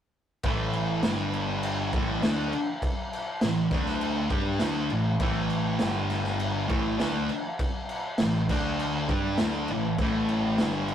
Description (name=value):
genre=garage rock duo or trio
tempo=100 BPM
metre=4/4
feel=straight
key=unclear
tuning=A4 = 441 Hz
part: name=growling picked electric bass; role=bass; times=0.4-10.9 s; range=G1 to G2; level=-34 LUFS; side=right 1 dB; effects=overdrive
part: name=raw garage drum kit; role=drums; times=0.4-10.9 s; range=crash cymbal, kick drum, snare drum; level=-29 LUFS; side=equal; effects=none
part: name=thick fuzz guitar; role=riff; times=0.5-10.9 s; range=G2 to G4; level=-27 LUFS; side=equal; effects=distortion
room=moderate small room reverb, RT60 0.5 s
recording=rough rehearsal-room recording, tube saturation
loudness=-25 LUFS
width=side -9 dB against mid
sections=0.4-10.9 A section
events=none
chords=0.4 A5; 1.0 G5; 1.9 A5; 3.7 D5; 4.3 A5; 5.8 G5; 6.7 A5; 8.5 D5; 9.1 A5